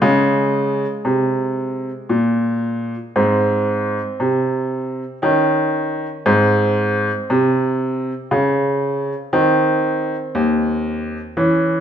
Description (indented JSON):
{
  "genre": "classical, baroque-style suite movement for grand piano",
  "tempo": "58 BPM",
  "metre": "3/4",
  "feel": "rubato",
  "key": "unclear",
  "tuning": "A4 = 440 Hz",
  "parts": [
    { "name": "clear baby grand piano", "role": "solo", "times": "0.0-11.8 s", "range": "Eb2 to Db4", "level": "-16 LUFS", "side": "equal", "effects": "none" }
  ],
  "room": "wet recital hall reverb, RT60 1.4 s",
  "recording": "minimal, uncompressed stereo recording",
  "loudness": "-16 LUFS",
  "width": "side -9 dB against mid",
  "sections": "0.0-11.8 A section",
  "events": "none",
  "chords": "0.0 Db5; 3.1 Ab; 5.2 Dbsus2/Eb; 6.2 Ab; 9.3 Cm/Eb"
}